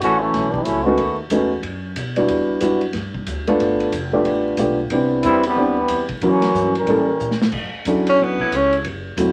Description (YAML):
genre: jazz, big band swing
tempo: 183 BPM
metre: 4/4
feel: swing 63% on 8ths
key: B minor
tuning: A4 = 440 Hz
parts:
  - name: clear trombone section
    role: second line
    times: 0.0-1.2, 5.2-7.4 s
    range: C3 to A#4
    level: -21 LUFS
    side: equal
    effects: none
  - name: upright bass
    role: bass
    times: 0.0-9.3 s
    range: E1 to B2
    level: -32 LUFS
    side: equal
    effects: none
  - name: vintage drum kit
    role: drums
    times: 0.0-9.3 s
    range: crash cymbal, hi-hat, kick drum, ride cymbal, snare drum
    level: -31 LUFS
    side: equal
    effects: none
  - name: dark concert grand piano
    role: accompaniment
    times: 0.9-9.3 s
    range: F#3 to A4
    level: -20 LUFS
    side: equal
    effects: none
  - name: breathy tenor saxophone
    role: melody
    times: 8.1-8.8 s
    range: B3 to C#4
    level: -19 LUFS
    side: equal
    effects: none
  - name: clear saxophone section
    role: sustained chords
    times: 8.4-8.8 s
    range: D3 to E4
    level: -27 LUFS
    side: equal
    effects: none
room: moderate small room reverb, RT60 0.5 s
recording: vinyl crackle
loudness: -19 LUFS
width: mono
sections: 0.0-7.5 A section; 7.5-9.3 B section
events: trombone section solo 0.0-7.5; drum fill 7.2-7.5; tenor saxophone solo 7.5-9.3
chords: 0.0 F#m7; 1.0 B7; 2.3 Em7; 3.6 G7; 4.9 Cmaj7; 6.2 F#7; 6.9 A7b9; 7.5 Dmaj9